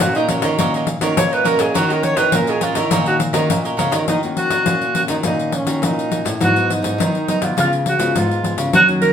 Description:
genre	samba and choro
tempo	103 BPM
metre	4/4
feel	straight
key	Eb minor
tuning	A4 = 441 Hz
part	breathy alto saxophone	melody	0.0-9.1 s	Db4 to Db5	-18 LUFS	right 1 dB	none
part	cavaquinho	accompaniment	0.0-4.1 s	Gb4 to Eb5	-22 LUFS	right 4 dB	none
part	nylon-string guitar	accompaniment	0.0-9.1 s	Gb2 to Gb4	-24 LUFS	left 2 dB	none
part	nylon-string guitar	bass	0.0-9.1 s	Ab2 to Gb3	-22 LUFS	equal	none
part	pandeiro	percussion	0.0-9.1 s	none	-21 LUFS	left 3 dB	none
room	wet studio reverb, RT60 0.6 s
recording	band playing live in one room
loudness	-15 LUFS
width	side -8 dB against mid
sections	0.0-4.1 A section; 4.1-9.1 B section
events	alto saxophone solo 0.0-4.1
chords	0.0 Ebm7; 6.4 Abm7; 7.6 Db7

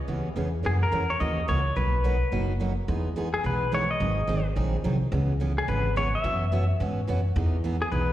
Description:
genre	country, western swing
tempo	214 BPM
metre	4/4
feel	swing 60% on 8ths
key	unclear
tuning	A4 = 440 Hz
part	picked steel-string acoustic guitar	accompaniment	0.1-8.1 s	B2 to G#4	-31 LUFS	right 3 dB	slapback echo
part	upright bass	bass	0.1-8.1 s	F#1 to G#2	-26 LUFS	equal	none
part	pedal steel guitar	melody	0.7-8.1 s	G#4 to E5	-29 LUFS	left 2 dB	slapback echo
room	light reverb, studio reverb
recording	live gig heard through the venue's PA, recital hall reverb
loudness	-24 LUFS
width	side -13 dB against mid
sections	0.0-2.9 A section; 2.9-8.1 B section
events	none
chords	0.0 C#m7; 0.6 F#7; 1.8 Bmaj7; 2.9 Emaj7; 4.0 G#7; 5.1 C#m7; 6.2 F#7sus4; 7.4 Emaj7

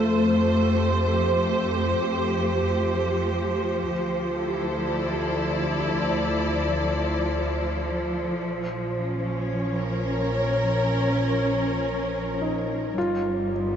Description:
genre	ambient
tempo	free time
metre	none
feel	none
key	unclear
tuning	A4 = 440 Hz
part	rich studio string section	sustained chords	0.0-13.8 s	F3 to D5	-24 LUFS	equal	none
part	felt-muted upright piano	arpeggios	0.0-3.9, 12.4-13.8 s	A3 to F4	-28 LUFS	left 2 dB	tape echo
part	warm symphonic double bass section	bass	0.0-13.8 s	G1 to F2	-29 LUFS	equal	none
room	wet huge ambient reverb, RT60 8.1 s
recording	dark, warm production, nothing above 7.7 kHz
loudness	-22 LUFS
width	side -8 dB against mid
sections	0.0-13.8 A section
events	none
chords	0.0 Fadd9; 3.9 Dmadd9; 8.4 Bbm; 13.0 G

